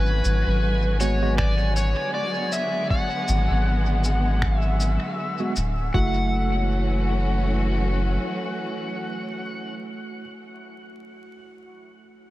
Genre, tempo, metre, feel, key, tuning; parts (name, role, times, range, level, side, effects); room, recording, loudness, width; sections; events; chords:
ambient dub; 79 BPM; 4/4; swing 57% on 16ths; F# minor; A4 = 439 Hz
overdriven slide guitar; melody; 0.0-9.7 s; B4 to F#5; -29 LUFS; left 1 dB; vintage 12-bit sampler grit, dub echo
dark studio string section; sustained chords; 0.0-9.7 s; D3 to F#4; -30 LUFS; left 1 dB
handpan; arpeggios; 0.0-1.1, 5.9-10.2 s; E4 to F#4; -43 LUFS; left 2 dB
soft dub sub bass; bass; 0.0-8.2 s; D1 to G#1; -22 LUFS; equal
bubbling stepped-filter texture; texture; 0.0-6.0 s; G#5; -36 LUFS; right 4 dB; chorus, built-in reverb
electronic shaker and finger snaps; drums; 0.2-5.7 s; -34 LUFS; left 1 dB; dub echo
tine electric piano; stabs; 1.0-10.2 s; G#3 to F#4; -32 LUFS; right 3 dB; fast stereo tremolo, dub echo
electronic kick drum; drums; 1.4-6.1 s; -25 LUFS; equal
light reverb; vinyl crackle; -21 LUFS; side -16 dB against mid
0.0-5.9 A section; 5.9-9.0 B section
0.0 G#m7b5; 5.9 F#m7